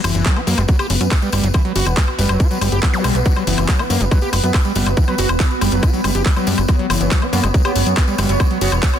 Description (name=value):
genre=psychedelic trance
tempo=140 BPM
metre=4/4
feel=straight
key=unclear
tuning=A4 = 444 Hz
part: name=pulsing gated texture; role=sustained chords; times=0.0-9.0 s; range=B3 to C#5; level=-23 LUFS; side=right 1 dB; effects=chorus, built-in reverb, sidechain pumping
part: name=screaming distorted acid line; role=riff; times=0.0-8.9 s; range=E3 to G4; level=-22 LUFS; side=moving between left 7 dB and right 6 dB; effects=distortion, chorus, auto-pan, sidechain pumping, digital delay
part: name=plucky analog bass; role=bass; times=0.0-8.8 s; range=E1 to F#2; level=-18 LUFS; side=equal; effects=none
part: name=drum and bass drum kit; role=drums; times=0.0-9.0 s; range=handclaps, hi-hat, woodblock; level=-23 LUFS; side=left 2 dB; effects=overdrive, small room ambience
part: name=tambourine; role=percussion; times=0.0-8.9 s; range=none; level=-30 LUFS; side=left 6 dB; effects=none
part: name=electronic kick drum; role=drums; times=0.3-8.9 s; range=none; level=-16 LUFS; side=equal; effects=overdrive, small room ambience
part: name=zap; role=sound effects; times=2.9-3.0 s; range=none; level=-26 LUFS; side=right 1 dB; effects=none
room=little or no reverb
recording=dense, heavily limited modern master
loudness=-14 LUFS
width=side -9 dB against mid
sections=0.0-9.0 A section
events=none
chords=0.0 F#5